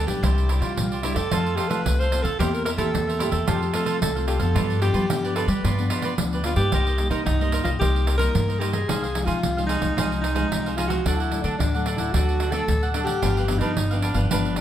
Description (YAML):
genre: samba and choro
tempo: 111 BPM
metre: 4/4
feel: straight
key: C minor from 6.7 s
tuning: A4 = 440 Hz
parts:
  - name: breathy alto saxophone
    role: melody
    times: 0.0-14.6 s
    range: D4 to C5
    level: -27 LUFS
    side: equal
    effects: plate reverb
  - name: cavaquinho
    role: accompaniment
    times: 0.0-14.6 s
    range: D4 to F#5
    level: -30 LUFS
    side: right 4 dB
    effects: none
  - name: nylon-string guitar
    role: accompaniment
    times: 0.0-14.6 s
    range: G2 to G4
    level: -29 LUFS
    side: left 2 dB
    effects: none
  - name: upright bass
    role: bass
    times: 0.0-14.6 s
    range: G1 to G3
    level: -24 LUFS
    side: equal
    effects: none
  - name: pandeiro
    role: percussion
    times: 0.1-14.6 s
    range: none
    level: -28 LUFS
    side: right 3 dB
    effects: none
room: moderate large studio reverb, RT60 1.0 s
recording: heard from further back in the room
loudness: -20 LUFS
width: side -11 dB against mid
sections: 0.0-6.7 A section; 6.7-14.6 B section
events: none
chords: 0.2 Cadd9; 1.3 F; 2.4 C7/E; 3.5 F; 4.6 G7; 6.7 Cm7; 8.9 Fm7/C; 11.1 D; 13.2 G7